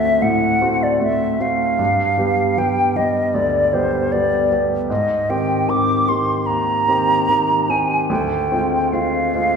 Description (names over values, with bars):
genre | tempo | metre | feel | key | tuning
classical, romantic duo for flute and grand piano | 76 BPM | 4/4 | rubato | unclear | A4 = 440 Hz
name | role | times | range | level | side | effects
hollow concert flute | melody | 0.0-9.6 s | C5 to D6 | -18 LUFS | equal | none
clear concert grand piano | accompaniment | 0.0-9.6 s | D2 to G4 | -20 LUFS | right 1 dB | none
room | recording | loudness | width
wet recital hall reverb, RT60 1.5 s | heard from further back in the room | -16 LUFS | side -6 dB against mid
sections
0.0-9.6 A section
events
none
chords
0.0 D7; 1.8 G7; 4.9 Abmaj7; 8.1 Dm7b5